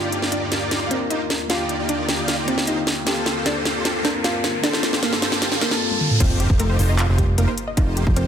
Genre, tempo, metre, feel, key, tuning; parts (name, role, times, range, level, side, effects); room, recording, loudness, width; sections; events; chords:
future bass; 153 BPM; 4/4; half-time; A4 = 441 Hz
mallet-like synth pluck; melody; 0.0-8.3 s; G3 to G5; -27 LUFS; equal; chorus, sidechain pumping, ping-pong delay
mellow electric guitar; accompaniment; 0.0-6.2 s; Bb3 to Bb4; -29 LUFS; left 4 dB; sidechain pumping, ping-pong delay
ethereal airy pad; sustained chords; 0.0-5.8 s; Eb2 to A5; -33 LUFS; right 1 dB; ensemble chorus, built-in reverb, phaser, sidechain pumping
supersaw chords; riff; 0.0-8.3 s; Bb3 to D5; -26 LUFS; equal; ensemble chorus, sidechain pumping
riser and impact; sound effects; 2.0-7.8 s; -29 LUFS; right 1 dB
trap drum kit; drums; 0.1-8.2 s; crash cymbal, handclaps, hi-hat, snare drum, toms; -23 LUFS; equal
wide unison pluck; arpeggios; 6.2-8.2 s; F4 to Eb5; -32 LUFS; equal; sidechain pumping, ping-pong delay
fat analog bass; bass; 6.2-8.3 s; F1; -19 LUFS; equal; sidechain pumping
electronic kick drum; drums; 6.2-8.1 s; -18 LUFS; equal
moderate lush hall reverb, RT60 2.1 s; -18 LUFS; side -8 dB against mid
0.0-6.2 A section; 6.2-8.3 B section
build-up 0.0-6.2; drum fill 0.0-5.8, 5.9; riser 2.0-6.2; drop 6.2-8.3; impact 6.2-7.8
0.0 Ebmaj9; 3.1 Gm11; 6.2 F9sus4